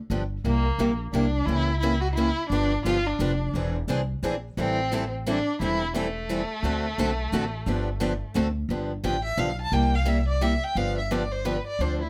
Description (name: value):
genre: acoustic string swing (jazz manouche)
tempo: 174 BPM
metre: 3/4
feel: swing 62% on 8ths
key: G mixolydian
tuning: A4 = 440 Hz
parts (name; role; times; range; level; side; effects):
- picked steel-string acoustic guitar; accompaniment; 0.1-12.0 s; C3 to A4; -30 LUFS; equal; none
- upright bass; bass; 0.1-12.1 s; E1 to D2; -30 LUFS; equal; none
- warm violin; melody; 0.5-12.1 s; A3 to A5; -31 LUFS; equal; slapback echo
- picked steel-string acoustic guitar; accompaniment; 2.5-8.5 s; D3 to B#4; -37 LUFS; equal; none
room: light reverb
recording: none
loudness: -26 LUFS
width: mono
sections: 0.0-8.7 A section; 8.7-12.1 B section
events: violin solo 8.7-12.1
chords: 0.1 G7; 0.4 C7; 1.5 C#dim7; 2.5 G7; 3.5 Eaug7; 4.6 Am7; 6.6 D7; 7.7 G7; 8.4 D7; 8.7 G7; 9.7 C7; 10.8 G7